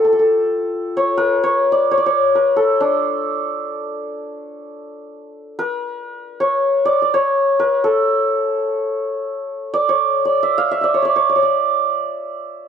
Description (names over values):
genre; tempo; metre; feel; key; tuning
Persian modal ensemble; free time; none; none; D avaz esfahan; A4 = 439 Hz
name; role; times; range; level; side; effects
santur; solo; 0.0-12.7 s; D4 to F5; -16 LUFS; equal; none
room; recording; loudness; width
light reverb; dry, close 1970s-style studio recording; -15 LUFS; side -7 dB against mid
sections
0.0-5.1 A section; 5.1-12.7 A section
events
none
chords
none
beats
free time